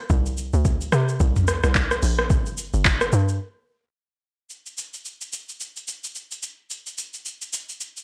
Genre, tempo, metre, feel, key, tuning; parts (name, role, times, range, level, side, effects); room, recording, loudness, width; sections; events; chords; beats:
amapiano; 109 BPM; 4/4; swing 58% on 16ths; A4 = 439 Hz
tight log drum bass; bass; 0.1-3.4 s; G1 to C3; -25 LUFS; equal; transformer saturation
smooth R&B drum kit; drums; 0.1-8.0 s; handclaps, hi-hat, kick drum, rim click, shaker, toms; -26 LUFS; equal
little or no reverb; dry, gritty hardware recording, cassette tape; -24 LUFS; mono
0.0-4.5 A section; 4.5-8.0 B section
drop 0.0-4.5; break 3.4-4.5
| 0.10 0.65 1.20 1.75 | 2.30 2.85 3.40 3.95 | 4.50 5.05 5.61 6.16 | 6.71 7.26 7.81